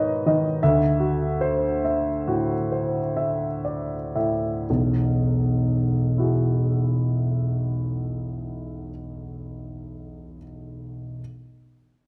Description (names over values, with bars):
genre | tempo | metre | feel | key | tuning
classical, impressionist solo piano | 38-57 BPM | 3/4 | rubato | E major | A4 = 442 Hz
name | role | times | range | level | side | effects
clear grand piano | solo | 0.0-11.2 s | E1 to E5 | -25 LUFS | equal | none
room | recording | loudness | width
moderate recital hall reverb, RT60 1.8 s | dark, warm production | -23 LUFS | mono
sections
0.0-4.7 A section; 4.7-9.0 B section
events
slowing down 0.0-4.7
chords
0.0 G#m7; 0.6 D9; 4.7 Eadd9